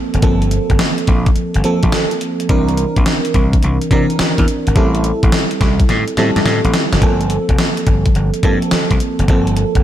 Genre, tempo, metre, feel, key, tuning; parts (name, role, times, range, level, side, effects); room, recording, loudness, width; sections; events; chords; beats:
R&B, new jack swing; 106 BPM; 4/4; swing 67% on 16ths; G dorian; A4 = 440 Hz
FM electric piano; accompaniment; 0.0-9.8 s; E3 to Bb4; -18 LUFS; right 2 dB; chorus
gritty slap bass; bass; 0.1-9.8 s; F1 to C3; -17 LUFS; equal; overdrive
crisp 8-bit digital drum machine; drums; 0.1-9.8 s; hi-hat, kick drum, snare drum; -15 LUFS; equal
light reverb, digital ambience; -12 LUFS; side -12 dB against mid
0.0-9.8 A section
drum fill 5.9-7.0
0.0 Gm11; 2.5 C9; 4.8 Am7; 7.0 Gm11
| 0.23 0.79 1.36 1.93 | 2.49 3.06 3.62 4.19 | 4.76 5.32 5.89 6.45 | 7.02 7.59 8.15 8.72 | 9.28